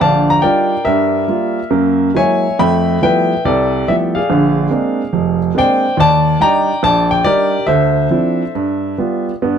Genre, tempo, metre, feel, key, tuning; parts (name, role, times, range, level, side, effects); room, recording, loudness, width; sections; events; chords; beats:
solo jazz; 141 BPM; 4/4; swing 66% on 8ths, rubato; A4 = 439 Hz
clear upright piano; solo; 0.0-9.6 s; F1 to B5; -12 LUFS; equal
moderate studio reverb, RT60 0.6 s; dark, warm production; -12 LUFS; side -8 dB against mid
0.0-9.4 A section
0.0 Ebmaj9; 0.9 Gm7; 1.7 F#9; 2.6 Fmaj9#11; 4.3 Bb9; 6.0 Ebmaj7; 7.7 Dm9; 8.6 G7
0.01 0.44 | 0.86 1.29 1.72 2.16 | 2.59 3.02 3.46 3.88 | 4.30 4.72 5.14 5.56 | 5.98 6.40 6.83 7.26 | 7.69 8.12 8.55 9.00 | 9.44